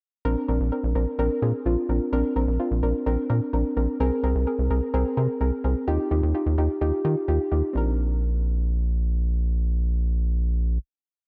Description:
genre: pop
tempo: 128 BPM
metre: 4/4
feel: straight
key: Bb mixolydian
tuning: A4 = 440 Hz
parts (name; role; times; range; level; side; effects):
- soft round pluck; accompaniment; 0.2-10.8 s; C4 to Bb4; -28 LUFS; equal; chorus
- rubbery square bass; bass; 0.3-10.8 s; Bb1 to Eb3; -25 LUFS; equal; none
room: moderate lush hall reverb, RT60 2.1 s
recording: dark, warm production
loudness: -25 LUFS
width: mono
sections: 0.3-7.8 verse; 7.8-11.3 final chord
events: none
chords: 0.3 Bbadd9; 4.0 Abadd9/C; 5.9 Ebadd9; 7.8 Bbadd9

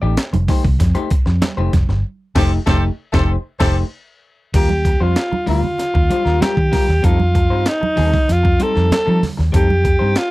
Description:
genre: funk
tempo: 96 BPM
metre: 4/4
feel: straight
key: unclear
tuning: A4 = 443 Hz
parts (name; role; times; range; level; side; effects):
- electric guitar at the edge of break-up; accompaniment; 0.0-10.2 s; G3 to D5; -24 LUFS; left 4 dB; none
- vintage muted fingered electric bass; bass; 0.0-10.1 s; F1 to F3; -16 LUFS; equal; none
- breakbeat sampler-style drum kit; drums; 0.2-10.3 s; crash cymbal, hi-hat, kick drum, snare drum; -18 LUFS; equal; none
- congas; percussion; 0.2-9.8 s; none; -26 LUFS; right 4 dB; none
- warm horn section; second line; 2.4-3.8 s; G4 to C5; -22 LUFS; equal; none
- breathy alto saxophone; melody; 4.6-10.3 s; Eb4 to A4; -18 LUFS; equal; none
room: little or no reverb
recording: dry, close 1970s-style studio recording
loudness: -14 LUFS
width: side -19 dB against mid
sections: 0.0-4.5 A section; 4.5-10.3 B section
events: band accent 2.0-4.5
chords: 0.0 F9; 4.5 Ebmaj9; 7.0 F9

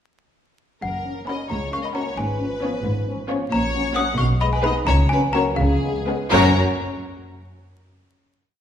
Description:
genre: cinematic, playful, whimsical film cue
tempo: 81-90 BPM (dotted quarters)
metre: 6/8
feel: straight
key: F# major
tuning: A4 = 440 Hz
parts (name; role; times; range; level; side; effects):
- clear studio violin section; melody; 0.8-6.6 s; G#4 to A#5; -28 LUFS; left 3 dB; none
- trough xylophone with soft rubber mallets; melody; 0.8-6.6 s; E#5 to D#6; -26 LUFS; left 3 dB; none
- rich studio cello section; bass; 0.8-6.6 s; C#2 to C#3; -25 LUFS; right 1 dB; none
- rich studio double bass section; bass; 0.8-6.6 s; F#1 to C#2; -25 LUFS; equal; none
- mellow French horn section; sustained chords; 1.0-6.5 s; E#3 to C#4; -27 LUFS; left 3 dB; none
- rich studio violin section; second line; 1.3-6.6 s; E#4 to C#5; -27 LUFS; left 2 dB; none
- rich studio viola section; accompaniment; 1.3-6.6 s; F#3 to F#4; -27 LUFS; right 2 dB; none
room: wet recital hall reverb, RT60 1.7 s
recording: recorded in a church or concert hall, vinyl crackle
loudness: -19 LUFS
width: side -9 dB against mid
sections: 0.8-6.3 A section; 6.3-7.8 final chord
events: none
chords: 0.8 F#; 2.2 C#7/G#; 3.5 F#/A#; 4.2 G#m/B; 4.9 F#/C#; 5.6 C#7; 6.3 F#

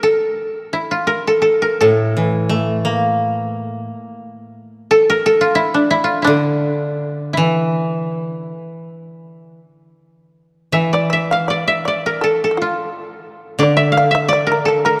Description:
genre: japanese traditional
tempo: 77-89 BPM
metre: 4/4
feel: rubato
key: D hirajoshi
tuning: A4 = 440 Hz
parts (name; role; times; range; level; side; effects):
- koto; melody; 0.0-15.0 s; D4 to F5; -18 LUFS; equal; none
- koto; accompaniment; 1.8-15.0 s; A2 to Bb3; -21 LUFS; equal; none
- shamisen; second line; 10.7-15.0 s; F4 to F5; -22 LUFS; equal; none
room: moderate church reverb, RT60 3.3 s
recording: dark, warm production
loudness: -17 LUFS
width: mono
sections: 0.0-15.0 A section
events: none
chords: none

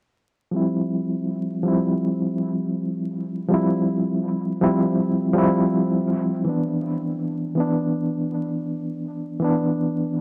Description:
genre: trip hop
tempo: 81 BPM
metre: 4/4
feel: swing 57% on 16ths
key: unclear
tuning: A4 = 440 Hz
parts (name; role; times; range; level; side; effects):
- reed electric piano; accompaniment; 0.5-10.2 s; E3 to E4; -23 LUFS; equal; tremolo, low-pass filter, tape echo
room: light reverb, digital ambience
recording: dry, gritty hardware recording, vinyl crackle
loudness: -23 LUFS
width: mono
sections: 0.5-10.2 A section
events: filter sweep on reed electric piano 0.5-10.2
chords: 0.5 Cadd11/F; 6.5 Bmadd11/E

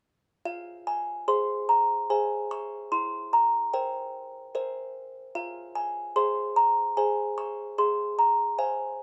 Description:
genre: classical, lullaby for music box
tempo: 74 BPM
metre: 3/4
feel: straight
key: F minor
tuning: A4 = 440 Hz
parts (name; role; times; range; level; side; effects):
- music box; solo; 0.5-9.0 s; E4 to Db6; -28 LUFS; equal; none
room: light reverb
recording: none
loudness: -27 LUFS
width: mono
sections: 0.5-9.0 A section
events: none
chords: 0.5 Fm; 2.9 C7/E; 5.4 Fm; 7.8 Fm/Ab

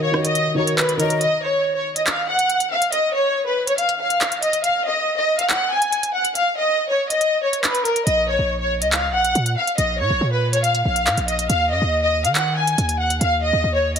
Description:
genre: hip hop, drill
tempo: 140 BPM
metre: 4/4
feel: half-time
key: unclear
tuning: A4 = 441 Hz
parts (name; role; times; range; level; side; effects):
- warm studio violin section; melody; 0.0-14.0 s; Bb4 to Ab5; -19 LUFS; left 1 dB; low-pass filter
- dark concert grand piano; accompaniment; 0.0-1.2 s; Eb3 to Db5; -23 LUFS; equal; low-pass filter
- drill drum kit; drums; 0.1-14.0 s; handclaps, hi-hat, rim click; -22 LUFS; right 1 dB; none
- breathy jazz flute; second line; 1.0-1.2 s; Eb5; -31 LUFS; left 4 dB; none
- hard-hitting 808-style bass; bass; 8.1-14.0 s; Bb1 to Eb3; -22 LUFS; right 1 dB; none
room: moderate digital room reverb, RT60 1.2 s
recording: heavily compressed radio sound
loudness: -17 LUFS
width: side -7 dB against mid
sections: 0.0-1.2 A section; 1.2-14.0 B section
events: break 0.0-1.2; kick muted 1.2-8.1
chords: 0.0 Ebm; 1.2 N.C.; 8.1 Bbm; 11.5 N.C.

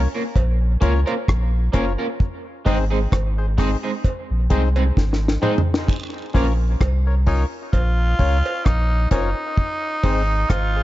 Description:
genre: dub reggae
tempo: 65 BPM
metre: 4/4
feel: swing 56% on 16ths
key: Bb minor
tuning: A4 = 440 Hz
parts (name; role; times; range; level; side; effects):
- percussive organ stab; stabs; 0.0-10.8 s; C4 to Db5; -28 LUFS; left 4 dB; chorus, dub echo
- warm sub bass; bass; 0.0-10.8 s; Gb1 to Db2; -19 LUFS; equal; none
- electric guitar at the edge of break-up; accompaniment; 0.1-6.5 s; Ab3 to Bb4; -27 LUFS; right 2 dB; wide subtle chorus, dub echo
- deep reggae drum kit; drums; 0.4-10.7 s; hi-hat, kick drum, rim click, snare drum, toms; -20 LUFS; equal; none
- cowbell and jawbone-type rattle; percussion; 0.4-10.7 s; none; -33 LUFS; right 4 dB; dub echo
- raspy tenor saxophone; melody; 7.3-10.8 s; Eb4 to F4; -24 LUFS; equal; dub echo
room: studio reverb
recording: dark, warm production, nothing above 7.7 kHz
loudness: -18 LUFS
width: side -16 dB against mid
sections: 0.0-10.8 A section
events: break 0.0-5.9; drum fill 5.0-5.9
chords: 0.0 Bbm; 2.2 Ab; 5.9 Bbm; 9.6 Ab

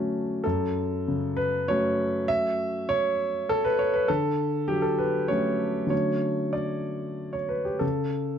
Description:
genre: neoclassical minimalist piano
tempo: 98 BPM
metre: 3/4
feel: uneven beats, rubato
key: unclear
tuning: A4 = 441 Hz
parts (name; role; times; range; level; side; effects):
- warm concert grand piano; solo; 0.0-8.4 s; F#2 to E5; -24 LUFS; equal; none
room: moderate studio reverb, RT60 0.8 s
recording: dark, warm production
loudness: -24 LUFS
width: side -8 dB against mid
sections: 0.4-8.4 A section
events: none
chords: 0.4 F#m7; 4.1 Dmaj7; 7.8 A/C#

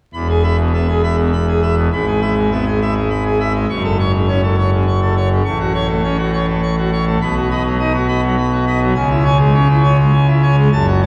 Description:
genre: classical, organ toccata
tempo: 102 BPM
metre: 3/4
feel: straight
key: E major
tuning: A4 = 445 Hz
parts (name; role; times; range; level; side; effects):
- pipe organ, full organ; solo; 0.1-11.1 s; E1 to C#6; -15 LUFS; equal; none
room: wet cathedral reverb, RT60 5.1 s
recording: vinyl crackle, small room ambience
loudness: -15 LUFS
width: mono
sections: 0.1-11.1 A section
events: none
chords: 0.1 E; 1.9 E/G#; 3.7 F#m; 5.4 F#m/A; 7.2 B; 9.0 C#m

